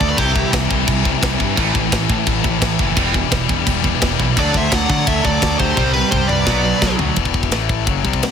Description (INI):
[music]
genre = heavy metal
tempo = 172 BPM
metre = 4/4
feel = straight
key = E minor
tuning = A4 = 440 Hz
[part]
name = nasal lead guitar with a parked wah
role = melody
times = 0.0-0.5, 4.4-7.0 s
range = G4 to F#5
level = -22 LUFS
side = equal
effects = overdrive, digital delay
[part]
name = smooth overdriven lead guitar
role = second line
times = 0.0-0.5, 4.4-7.0 s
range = E4 to D5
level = -26 LUFS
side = right 6 dB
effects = none
[part]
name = high-gain distorted guitar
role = riff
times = 0.0-7.2 s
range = E2 to D4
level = -21 LUFS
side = right 13 dB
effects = distortion
[part]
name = tight distorted guitar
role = riff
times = 0.0-8.2 s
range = E2 to C4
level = -21 LUFS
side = left 16 dB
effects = distortion
[part]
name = fuzz picked electric bass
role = bass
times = 0.0-8.2 s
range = E1 to D3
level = -21 LUFS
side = equal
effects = overdrive
[part]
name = tight metal drum kit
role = drums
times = 0.0-8.3 s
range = crash cymbal, kick drum, ride cymbal, snare drum, toms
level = -20 LUFS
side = equal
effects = soft clipping on snare
[sound]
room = small room reverb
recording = dense, heavily limited modern master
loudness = -14 LUFS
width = side -7 dB against mid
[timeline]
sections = 0.0-7.2 A section; 7.2-8.3 B section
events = drum fill 5.8-7.2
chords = 0.2 C; 1.6 A5; 3.0 Em; 4.4 D; 5.8 C5; 6.5 Bm; 7.2 E5; 7.5 A5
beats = | 0.18 0.53 0.88 1.23 | 1.57 1.92 2.27 2.62 | 2.97 3.32 3.67 4.02 | 4.37 4.72 5.07 5.42 | 5.77 6.12 6.47 6.82 | 7.17 7.52 7.87 8.22